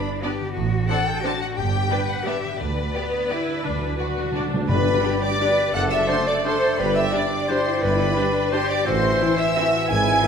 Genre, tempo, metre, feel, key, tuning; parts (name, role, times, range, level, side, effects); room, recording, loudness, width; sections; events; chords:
classical, orchestral ballroom waltz; 174 BPM; 3/4; uneven beats, rubato; G major; A4 = 441 Hz
rich studio violin section; melody; 0.0-10.3 s; D5 to G#6; -28 LUFS; left 3 dB
concert harp; arpeggios; 0.0-10.3 s; F#2 to D5; -30 LUFS; left 8 dB
clear studio cello section; bass; 0.0-10.3 s; D4 to B4; -30 LUFS; equal
rich studio violin section; second line; 0.2-10.3 s; F#4 to G#5; -27 LUFS; left 1 dB
clear studio viola section; accompaniment; 0.2-10.3 s; B3 to A4; -31 LUFS; right 1 dB
warm studio double bass section; bass; 0.6-10.2 s; F#1 to D2; -28 LUFS; right 5 dB
timpani; percussion; 3.6-5.2 s; G2 to D3; -27 LUFS; equal
mellow clarinet; second line; 4.7-10.3 s; B4 to G#5; -28 LUFS; left 1 dB
mellow hollow concert flute; second line; 4.7-10.3 s; B4 to G#5; -26 LUFS; equal
warm oboe; second line; 4.7-10.3 s; D5 to E5; -30 LUFS; right 1 dB
mellow bassoon; accompaniment; 4.7-10.3 s; E3 to A3; -28 LUFS; left 1 dB
warm tuba; bass; 4.7-10.2 s; F#1 to A1; -30 LUFS; right 4 dB
dark French horn section; sustained chords; 5.0-10.3 s; E3 to E4; -31 LUFS; left 4 dB
moderate concert hall reverb, RT60 2.2 s; minimal, uncompressed stereo recording; -19 LUFS; side -7 dB against mid
0.0-4.7 A section; 4.7-10.3 B section
timpani fill 3.6-4.7
0.0 G; 0.6 D7/A; 1.6 G; 2.6 G/D; 3.6 D; 4.7 G; 5.7 D/F#; 6.8 G; 8.9 Am